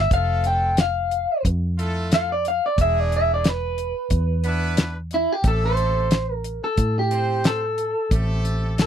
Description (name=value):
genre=straight-eighth soul blues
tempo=90 BPM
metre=4/4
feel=swing 53% on 16ths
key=A minor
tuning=A4 = 440 Hz
part: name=electric guitar at the edge of break-up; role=melody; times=0.0-8.9 s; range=E4 to G5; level=-22 LUFS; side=equal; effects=none
part: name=vintage muted fingered electric bass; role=bass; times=0.0-8.9 s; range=E1 to A2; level=-24 LUFS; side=equal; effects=none
part: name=brilliant horn section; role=sustained chords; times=0.1-8.8 s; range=G#3 to C5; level=-30 LUFS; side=right 1 dB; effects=none
part: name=damped 70s drum kit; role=drums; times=0.1-8.9 s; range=hi-hat, kick drum, snare drum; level=-20 LUFS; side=equal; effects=none
room=little or no reverb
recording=dry, close 1970s-style studio recording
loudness=-19 LUFS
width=side -9 dB against mid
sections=0.0-8.9 A section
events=clean electric guitar solo 0.0-8.9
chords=0.1 Fmaj7; 2.8 E7; 5.5 Am7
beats=| 0.11 0.78 1.44 2.11 | 2.78 3.45 4.12 4.78 | 5.45 6.12 6.79 7.45 | 8.12 8.79